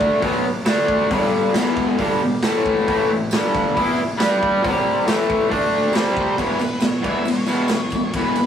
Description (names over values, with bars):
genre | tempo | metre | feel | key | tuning
garage rock duo or trio | 136 BPM | 4/4 | straight | unclear | A4 = 440 Hz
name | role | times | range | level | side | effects
raw garage guitar | riff | 0.0-8.5 s | E2 to G4 | -18 LUFS | left 1 dB | overdrive, spring reverb
raw garage drum kit | drums | 0.0-8.5 s | hi-hat, kick drum, ride cymbal, snare drum | -24 LUFS | equal | none
tambourine | percussion | 0.7-8.5 s | none | -37 LUFS | right 4 dB | none
octave-fuzz lead guitar | melody | 6.2-8.5 s | B4 to E5 | -29 LUFS | right 1 dB | distortion
room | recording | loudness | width
wet small room reverb, RT60 0.5 s | rough rehearsal-room recording, small room ambience | -17 LUFS | side -8 dB against mid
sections
0.0-6.4 A section; 6.4-8.5 B section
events
none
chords
0.2 N.C.; 0.7 D5; 1.1 G5; 1.6 E5; 2.4 A5; 3.3 G5; 3.8 N.C.; 4.2 G5; 4.6 C5; 5.1 A5; 5.5 D5; 6.0 C5; 6.4 E5